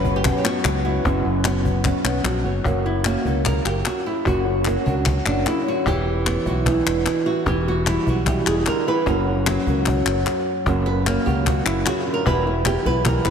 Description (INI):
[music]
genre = flamenco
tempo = 150 BPM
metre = 4/4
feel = straight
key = unclear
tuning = A4 = 440 Hz
[part]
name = flamenco guitar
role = melody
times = 0.0-13.3 s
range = F#2 to C#5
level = -22 LUFS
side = equal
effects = diffuse ambient delay
[part]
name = flamenco guitar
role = stabs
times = 0.0-13.3 s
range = B2 to F#4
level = -27 LUFS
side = right 3 dB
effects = analog chorus, diffuse ambient delay
[part]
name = modern bright fingered electric bass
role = bass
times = 0.0-13.3 s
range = E1 to C#2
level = -24 LUFS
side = equal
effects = none
[part]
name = cajon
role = percussion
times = 0.0-13.3 s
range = none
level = -28 LUFS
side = left 1 dB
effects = none
[part]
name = palmas hand claps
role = percussion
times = 0.2-13.3 s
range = none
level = -28 LUFS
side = left 6 dB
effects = none
[sound]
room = wet lush hall reverb, RT60 2.6 s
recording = dreamy mix soaked in reverb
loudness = -18 LUFS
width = side -7 dB against mid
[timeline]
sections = 0.0-2.7 A section; 2.7-13.3 B section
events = nylon-string guitar solo 2.7-13.3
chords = 0.0 F#sus4; 2.7 F#; 5.9 Em; 9.1 F#; 12.3 Em